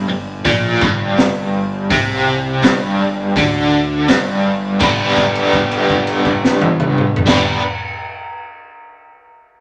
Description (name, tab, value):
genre	psychedelic rock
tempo	83 BPM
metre	4/4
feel	straight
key	G major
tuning	A4 = 441 Hz
part	biting overdriven guitar	riff	0.0-7.6 s	G2 to B4	-18 LUFS	equal	tremolo
part	fuzz picked electric bass	bass	0.0-7.6 s	G1 to D2	-28 LUFS	equal	overdrive
part	raw garage drum kit	drums	0.5-7.4 s	crash cymbal, hi-hat, kick drum, snare drum, toms	-20 LUFS	equal	none
room	wet studio reverb, RT60 0.7 s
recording	none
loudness	-15 LUFS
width	mono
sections	0.0-4.8 A section; 4.8-7.7 B section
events	held note 4.8-7.3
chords	0.0 G5; 4.8 G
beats	0.46 1.18 | 1.91 2.63 3.36 4.09 | 4.81 5.54 6.26 6.98